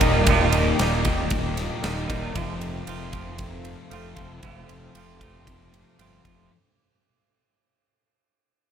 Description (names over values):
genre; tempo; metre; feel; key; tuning
rock, shoegaze and dream pop; 116 BPM; 4/4; straight; unclear; A4 = 438 Hz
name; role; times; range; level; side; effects
deep dark ambient pad; sustained chords; 0.0-6.5 s; A4 to D6; -31 LUFS; equal; chorus, built-in reverb
clean electric guitar; riff; 0.0-6.5 s; Eb2 to F4; -28 LUFS; right 10 dB; reverse reverb
thick fuzz guitar; riff; 0.0-6.5 s; Eb2 to F3; -29 LUFS; left 7 dB; distortion, ensemble chorus
fuzz fingered electric bass; bass; 0.0-6.5 s; Eb1 to G1; -28 LUFS; equal; overdrive
huge arena drum kit; drums; 0.0-6.4 s; kick drum, ride cymbal, snare drum; -26 LUFS; equal; none
room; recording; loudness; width
small room ambience; none; -21 LUFS; side -8 dB against mid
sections
0.0-6.5 A section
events
fade-out 0.0-6.5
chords
0.0 Ebmaj7; 2.4 F